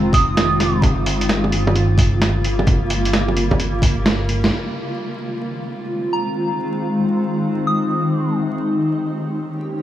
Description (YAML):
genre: future garage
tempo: 130 BPM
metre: 4/4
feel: swing 64% on 16ths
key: F minor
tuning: A4 = 440 Hz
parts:
  - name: granular cloud pad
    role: sustained chords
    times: 0.0-9.8 s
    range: Db3 to G4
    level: -20 LUFS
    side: left 1 dB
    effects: built-in reverb, sidechain pumping
  - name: dark detuned saw bass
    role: bass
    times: 0.0-4.5 s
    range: F1 to G1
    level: -20 LUFS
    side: equal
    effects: tube saturation, sidechain pumping
  - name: soft synth bell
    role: melody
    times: 0.1-0.8, 6.1-8.3 s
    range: Bb5 to Eb6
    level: -25 LUFS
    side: right 2 dB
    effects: chorus, phaser, analog delay
  - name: electronic kick drum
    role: drums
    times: 0.1-3.9 s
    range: none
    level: -17 LUFS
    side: equal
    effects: none
  - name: lo-fi sampler-style drum kit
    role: drums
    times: 0.1-4.5 s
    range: bongos, hi-hat, snare drum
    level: -21 LUFS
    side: right 1 dB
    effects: none
room: light reverb, digital ambience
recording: vinyl crackle, studio reverb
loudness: -16 LUFS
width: side -12 dB against mid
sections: 0.0-4.5 A section; 4.5-9.8 B section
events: kick drops out 4.1-4.5; drum fill 4.1-4.5; band accent 4.4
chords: 0.0 Fm7; 0.8 Gm7b5; 4.5 Fm7; 8.2 Eb7